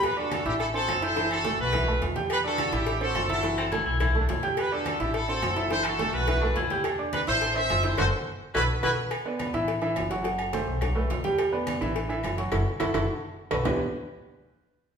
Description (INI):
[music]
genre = latin, salsa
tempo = 212 BPM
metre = 4/4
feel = straight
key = E minor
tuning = A4 = 440 Hz
[part]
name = bright horn section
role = melody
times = 0.0-8.9 s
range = E4 to E5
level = -27 LUFS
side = equal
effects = none
[part]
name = upright bass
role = bass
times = 0.0-13.8 s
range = F#1 to E2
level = -31 LUFS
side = equal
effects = none
[part]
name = agogo bells and timbales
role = percussion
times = 0.0-13.7 s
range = none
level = -36 LUFS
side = right 3 dB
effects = none
[part]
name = claves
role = percussion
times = 0.0-13.7 s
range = none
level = -43 LUFS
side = left 4 dB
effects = none
[part]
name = congas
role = percussion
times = 0.0-13.7 s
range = none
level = -38 LUFS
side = left 1 dB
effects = none
[part]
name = cowbell and bongos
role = percussion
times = 0.0-13.7 s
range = none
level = -37 LUFS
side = left 5 dB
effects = none
[part]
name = clear grand piano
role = accompaniment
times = 0.2-13.8 s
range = E3 to G6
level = -29 LUFS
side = right 2 dB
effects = none
[part]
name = clear baritone saxophone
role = second line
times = 3.6-8.9 s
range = C4 to F#4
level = -32 LUFS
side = left 4 dB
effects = none
[sound]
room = wet large studio reverb, RT60 1.2 s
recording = band playing live in one room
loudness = -24 LUFS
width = side -6 dB against mid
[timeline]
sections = 0.0-9.1 A section; 9.1-13.7 B section; 13.7-14.8 C section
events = band accent 8.0-9.1, 12.5-13.7; drum fill 8.3-9.1, 12.5-13.7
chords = 0.0 Em7; 0.6 Am; 1.2 F#m7b5; 1.7 B7sus4; 2.3 Em7; 2.9 Am; 3.4 F#m7; 4.0 B7sus4; 4.6 Em7; 5.1 Am; 5.7 F#m7b5; 6.3 B7sus4; 6.8 Em7; 7.4 Am; 8.0 F#dim; 8.5 B7(no3); 9.1 E5; 9.7 A5; 10.2 F#dim; 10.8 B7sus4; 11.4 Em7; 11.9 F#m7; 13.1 B5; 13.7 Em7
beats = | 0.03 0.32 0.60 0.89 | 1.17 1.45 1.74 2.02 | 2.30 2.59 2.87 3.15 | 3.44 3.72 4.01 4.29 | 4.57 4.86 5.14 5.43 | 5.71 5.99 6.28 6.56 | 6.84 7.13 7.41 7.70 | 7.98 8.26 8.55 8.83 | 9.11 9.40 9.68 9.96 | 10.25 10.53 10.81 11.10 | 11.38 11.67 11.95 12.23 | 12.52 12.80 13.09 13.37 | 13.65